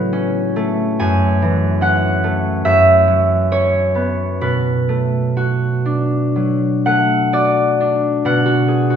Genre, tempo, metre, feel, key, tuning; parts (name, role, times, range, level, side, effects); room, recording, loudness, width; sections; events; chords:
classical, solo harp piece; 58-74 BPM; 4/4; rubato; B dorian; A4 = 440 Hz
concert harp; solo; 0.0-9.0 s; F#2 to G#5; -14 LUFS; equal
wet scoring stage reverb, RT60 1.4 s; recorded in a church or concert hall; -14 LUFS; side -8 dB against mid
0.0-8.2 A section
0.0 A69; 1.0 F#m7; 2.6 F#7sus4; 4.4 Bm7